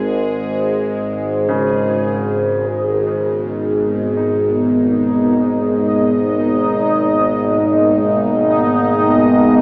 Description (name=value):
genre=dark ambient drone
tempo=free time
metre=none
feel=none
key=G# minor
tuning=A4 = 441 Hz
part: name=overtone-sweeping drone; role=drone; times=0.0-9.6 s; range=G#1 to G#2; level=-17 LUFS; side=equal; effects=chorus, built-in reverb
part: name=bubbling stepped-filter texture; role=texture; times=0.0-9.6 s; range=G#3 to D#5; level=-19 LUFS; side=equal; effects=chorus, built-in reverb
part: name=clear concert grand piano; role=arpeggios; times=1.5-9.6 s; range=C#3 to D#4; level=-28 LUFS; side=equal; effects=tape echo
part: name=deep dark ambient pad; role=sustained chords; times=3.5-9.6 s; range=B3 to D#5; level=-16 LUFS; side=equal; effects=chorus, built-in reverb
room=wet cathedral reverb, RT60 4.6 s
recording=in a vast, echoing space, small speaker sound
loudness=-13 LUFS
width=side -39 dB against mid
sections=0.0-2.7 A section; 2.7-9.6 B section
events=none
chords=0.0 G#5; 2.7 G#madd9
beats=free time